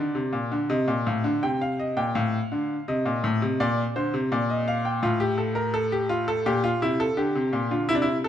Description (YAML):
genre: classical, baroque-style two-part invention for grand piano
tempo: 84 BPM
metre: 4/4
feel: straight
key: Bb major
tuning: A4 = 440 Hz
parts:
  - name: bright baby grand piano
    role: solo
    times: 0.0-8.3 s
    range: A2 to G5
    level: -23 LUFS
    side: left 1 dB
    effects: none
room: moderate scoring stage reverb, RT60 1.7 s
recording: close, detailed microphones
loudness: -23 LUFS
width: side -10 dB against mid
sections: 0.0-8.3 A section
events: none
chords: 0.0 Bb; 0.7 Cm7; 2.1 F/A; 3.6 Bb; 5.0 F/A; 6.5 Gm7/Bb